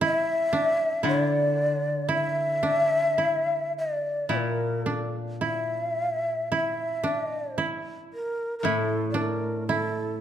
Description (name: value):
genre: japanese traditional, Japanese chamber music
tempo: 54-59 BPM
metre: 2/4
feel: rubato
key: unclear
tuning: A4 = 439 Hz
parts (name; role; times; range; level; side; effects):
- koto; second line; 0.0-10.2 s; D4 to E4; -29 LUFS; right 3 dB; none
- breathy hollow shakuhachi; melody; 0.1-10.2 s; A4 to E5; -26 LUFS; left 1 dB; none
- koto; accompaniment; 1.0-10.2 s; A2 to D3; -30 LUFS; left 3 dB; none
room: moderate recital hall reverb, RT60 1.4 s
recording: dark, warm production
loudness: -24 LUFS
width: side -10 dB against mid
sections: 0.0-10.2 A section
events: none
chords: none